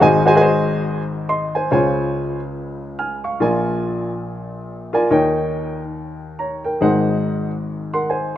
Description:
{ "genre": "gospel", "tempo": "141 BPM", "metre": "4/4", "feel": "swing 60% on 8ths", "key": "Db major", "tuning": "A4 = 439 Hz", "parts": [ { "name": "warm baby grand piano", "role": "solo", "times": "0.0-8.4 s", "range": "Ab1 to F6", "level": "-17 LUFS", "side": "equal", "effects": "none" } ], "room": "moderate lush hall reverb, RT60 2.6 s", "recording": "rough home demo mix", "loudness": "-17 LUFS", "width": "side -12 dB against mid", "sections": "0.0-1.7 A section; 1.7-8.4 B section", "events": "grand piano fill 7.7-8.4", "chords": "0.0 Ab7; 1.7 Dbmaj7; 3.4 Bb7; 5.1 Eb7; 6.8 Ab7" }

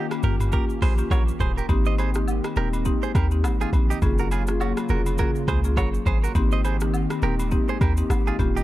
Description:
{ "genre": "afrobeats", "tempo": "103 BPM", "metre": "4/4", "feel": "swing 58% on 16ths", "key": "Ab major", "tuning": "A4 = 441 Hz", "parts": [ { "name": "hollow soft pad", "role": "sustained chords", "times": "0.0-8.6 s", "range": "Db3 to G4", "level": "-32 LUFS", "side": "left 1 dB", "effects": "ensemble chorus" }, { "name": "direct-recorded clean electric guitar", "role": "riff", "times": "0.0-8.6 s", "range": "Db4 to Eb5", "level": "-31 LUFS", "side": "right 7 dB", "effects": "spring reverb, digital delay" }, { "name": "afro-pop drum kit", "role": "drums", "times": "0.1-8.6 s", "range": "hi-hat, kick drum, rim click, shaker, toms", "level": "-25 LUFS", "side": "equal", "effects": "none" }, { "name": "agogo bells and woodblock", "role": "percussion", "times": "0.1-8.6 s", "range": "none", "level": "-37 LUFS", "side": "left 2 dB", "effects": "none" }, { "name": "marimba with medium mallets", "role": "accompaniment", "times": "0.2-8.6 s", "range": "Bb3 to Ab4", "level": "-28 LUFS", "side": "left 2 dB", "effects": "none" }, { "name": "warm 808-style bass", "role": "bass", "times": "0.2-8.6 s", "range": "Eb1 to Eb2", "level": "-23 LUFS", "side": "equal", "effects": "none" } ], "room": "little or no reverb", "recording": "dark, warm production", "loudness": "-20 LUFS", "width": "side -15 dB against mid", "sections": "0.0-8.6 A section", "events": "none", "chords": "0.0 Eb7; 1.7 Abmaj7; 4.0 Gbmaj7; 6.4 Abmaj7" }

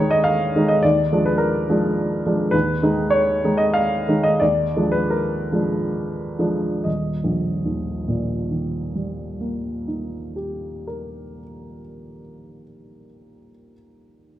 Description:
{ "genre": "classical, romantic character piece for solo piano", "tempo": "62-108 BPM", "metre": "3/4", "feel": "rubato", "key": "unclear", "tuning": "A4 = 442 Hz", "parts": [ { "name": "warm upright piano", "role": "solo", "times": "0.0-14.4 s", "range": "Eb1 to F5", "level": "-19 LUFS", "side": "equal", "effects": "none" } ], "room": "wet recital hall reverb, RT60 1.4 s", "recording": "none", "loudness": "-19 LUFS", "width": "side -13 dB against mid", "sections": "0.0-6.9 A section; 6.9-12.3 B section", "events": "slowing down 1.7-6.9", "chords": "0.0 Abm/Eb; 0.8 Bb7/Eb; 2.5 Abm/Eb; 4.4 Bb7/Eb; 6.9 Eb" }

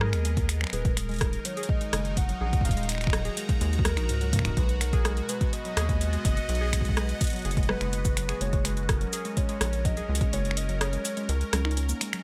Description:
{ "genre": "IDM", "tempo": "125 BPM", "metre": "4/4", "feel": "straight", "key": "unclear", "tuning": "A4 = 438 Hz", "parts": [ { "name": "warbly nostalgic lead", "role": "melody", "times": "0.0-12.0 s", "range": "A#4 to F#5", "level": "-39 LUFS", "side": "equal", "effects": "chorus, tremolo, dub echo" }, { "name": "phased analog pad", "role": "sustained chords", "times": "0.0-12.2 s", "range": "B2 to A#5", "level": "-40 LUFS", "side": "equal", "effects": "phaser, chorus" }, { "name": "warbly dusty pluck", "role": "arpeggios", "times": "0.0-12.2 s", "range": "G#2 to G#4", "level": "-38 LUFS", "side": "equal", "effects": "subtle chorus, cassette tape, digital delay" }, { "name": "rubbery square bass", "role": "bass", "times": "0.0-11.9 s", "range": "D#1 to G#2", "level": "-31 LUFS", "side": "equal", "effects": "none" }, { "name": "booming analog drum machine", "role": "drums", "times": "0.0-12.2 s", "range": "cabasa, finger snaps, hi-hat, rim click, toms", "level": "-34 LUFS", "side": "equal", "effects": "none" }, { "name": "electronic kick drum", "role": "drums", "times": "0.4-10.3 s", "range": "none", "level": "-29 LUFS", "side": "equal", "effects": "none" } ], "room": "digital ambience", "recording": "none", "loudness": "-27 LUFS", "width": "mono", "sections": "0.0-12.2 A section", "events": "kick drops out 10.3-12.2", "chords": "0.0 G#madd9; 0.7 D#m; 4.6 B; 8.4 F#" }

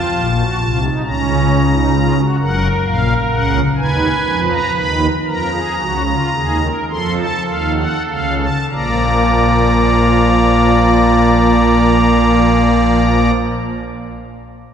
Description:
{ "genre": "classical, baroque-style 3-part fugue for pipe organ", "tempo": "31-44 BPM (dotted quarters)", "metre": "6/8", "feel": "straight", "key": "Bb minor", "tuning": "A4 = 440 Hz", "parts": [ { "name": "pipe organ, strings celeste", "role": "solo", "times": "0.0-13.3 s", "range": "Gb1 to C6", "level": "-12 LUFS", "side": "equal", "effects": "none" } ], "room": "wet church reverb, RT60 3.5 s", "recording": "heard from further back in the room", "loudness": "-12 LUFS", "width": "side -8 dB against mid", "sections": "0.0-8.7 A section; 8.7-12.6 B section", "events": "slowing down 1.0-8.7", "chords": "0.0 F; 1.0 Bbm/Db; 2.4 Gb; 3.8 B/D#; 5.3 Bbm; 6.9 F7; 8.7 Bb" }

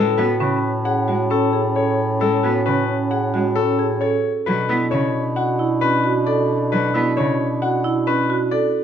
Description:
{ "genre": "classical, minimalist pattern music", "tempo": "133 BPM", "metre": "5/4", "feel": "straight", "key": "B dorian", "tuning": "A4 = 440 Hz", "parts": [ { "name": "bright concert grand piano", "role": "melody", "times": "0.0-8.8 s", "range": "A4 to F#5", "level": "-22 LUFS", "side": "left 7 dB", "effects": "none" }, { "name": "warm French horn", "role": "second line", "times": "0.0-8.7 s", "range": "C#4 to D4", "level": "-27 LUFS", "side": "right 4 dB", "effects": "none" }, { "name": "rich cello", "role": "accompaniment", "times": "0.0-7.3 s", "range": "C#3 to B3", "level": "-24 LUFS", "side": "equal", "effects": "none" }, { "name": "bright bass clarinet", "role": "bass", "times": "0.0-8.8 s", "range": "A2 to B2", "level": "-23 LUFS", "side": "left 2 dB", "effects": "none" }, { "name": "marimba with medium hard mallets", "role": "arpeggios", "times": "0.2-8.8 s", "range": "C#4 to A4", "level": "-22 LUFS", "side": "right 6 dB", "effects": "none" } ], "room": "light reverb", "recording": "none", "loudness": "-17 LUFS", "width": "side -8 dB against mid", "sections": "0.0-8.8 A section", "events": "none", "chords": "0.0 Amaj7; 4.5 Bm9" }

